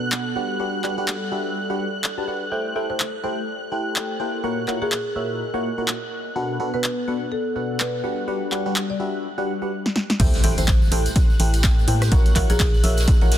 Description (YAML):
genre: piano house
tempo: 125 BPM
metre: 4/4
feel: swing 59% on 16ths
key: A dorian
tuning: A4 = 439 Hz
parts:
  - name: analog string pad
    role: sustained chords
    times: 0.0-13.4 s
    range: F#6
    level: -34 LUFS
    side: equal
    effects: ensemble chorus, sidechain pumping
  - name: barking FM electric piano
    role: riff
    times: 0.0-13.4 s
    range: A#2 to A5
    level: -26 LUFS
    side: equal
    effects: phaser, sidechain pumping, dub echo
  - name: warbly tape-like pad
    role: texture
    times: 0.0-13.4 s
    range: G3 to G#5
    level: -32 LUFS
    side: left 1 dB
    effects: chorus, built-in reverb, sidechain pumping
  - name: punchy analog drum machine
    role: drums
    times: 0.1-13.4 s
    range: crash cymbal, handclaps, hi-hat, rim click, snare drum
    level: -26 LUFS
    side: equal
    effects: overdrive, small room ambience
  - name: marimba with medium mallets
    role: melody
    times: 2.9-13.0 s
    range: G#4 to D5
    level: -30 LUFS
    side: equal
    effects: dub echo
  - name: organ-like FM bass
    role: bass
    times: 10.2-13.4 s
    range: A1 to A2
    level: -21 LUFS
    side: equal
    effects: sidechain pumping
  - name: electronic kick drum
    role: drums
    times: 10.2-13.2 s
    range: none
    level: -18 LUFS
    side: equal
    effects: small room ambience
  - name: vintage drum kit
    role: drums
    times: 10.2-13.4 s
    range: ride cymbal, snare drum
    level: -35 LUFS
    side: left 2 dB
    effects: high-pass filter on cymbals, small room ambience, high-pass filter on snare, high-pass filter on room
  - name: tambourine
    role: percussion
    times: 10.2-13.3 s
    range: none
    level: -36 LUFS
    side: right 3 dB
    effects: none
  - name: impact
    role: sound effects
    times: 10.2-12.1 s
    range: none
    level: -28 LUFS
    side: equal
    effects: none
room: light reverb, small room ambience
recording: dense, heavily limited modern master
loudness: -20 LUFS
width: side -11 dB against mid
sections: 0.0-10.2 A section; 10.2-13.4 B section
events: drum fill 9.8-10.2; drop 10.2-13.4; impact 10.2-12.1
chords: 0.4 Gmaj7; 2.5 Am7; 4.4 F#7/A#; 6.1 Bm7; 8.0 Gmaj7; 10.2 Am7; 12.1 F#7/A#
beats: 0.12 | 0.60 1.08 1.56 2.04 | 2.52 3.00 3.48 3.96 | 4.44 4.92 5.40 5.88 | 6.36 6.84 7.32 7.80 | 8.28 8.76 9.24 9.72 | 10.20 10.68 11.16 11.64 | 12.12 12.60 13.08